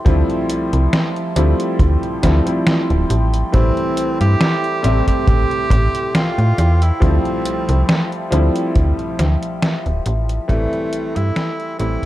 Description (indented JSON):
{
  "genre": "vaporwave",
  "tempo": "69 BPM",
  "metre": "4/4",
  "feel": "swing 54% on 16ths",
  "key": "D minor",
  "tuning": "A4 = 440 Hz",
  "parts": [
    { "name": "warm electric grand piano", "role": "accompaniment", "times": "0.0-12.1 s", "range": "C3 to E5", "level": "-21 LUFS", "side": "left 1 dB", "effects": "wide subtle chorus, analog delay" },
    { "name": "warbly tape-like pad", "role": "sustained chords", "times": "0.0-12.1 s", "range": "F3 to C6", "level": "-28 LUFS", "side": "right 1 dB", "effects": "chorus, built-in reverb" },
    { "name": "slap-like FM bass", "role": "bass", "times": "0.1-12.0 s", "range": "D1 to A2", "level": "-15 LUFS", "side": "equal", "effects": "none" },
    { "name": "detuned 8-bit digital drum machine", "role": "drums", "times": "0.1-12.1 s", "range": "hi-hat, snare drum", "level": "-20 LUFS", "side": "equal", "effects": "none" },
    { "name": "kick drum", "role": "drums", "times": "0.1-12.1 s", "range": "none", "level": "-18 LUFS", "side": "equal", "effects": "none" },
    { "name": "bright tenor saxophone", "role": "melody", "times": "3.5-12.1 s", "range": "A3 to G4", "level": "-23 LUFS", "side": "right 1 dB", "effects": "tape echo" }
  ],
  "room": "light reverb, studio ambience",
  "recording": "none",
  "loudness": "-14 LUFS",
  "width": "side -15 dB against mid",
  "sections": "0.0-12.1 A section",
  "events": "fade-out 8.2-12.1",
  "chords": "0.1 Dm11; 3.5 Am7; 7.0 Dm11; 10.5 Am7",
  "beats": "| 0.06 0.93 1.80 2.67 | 3.54 4.41 5.28 6.15 | 7.02 7.89 8.76 9.62 | 10.49 11.36"
}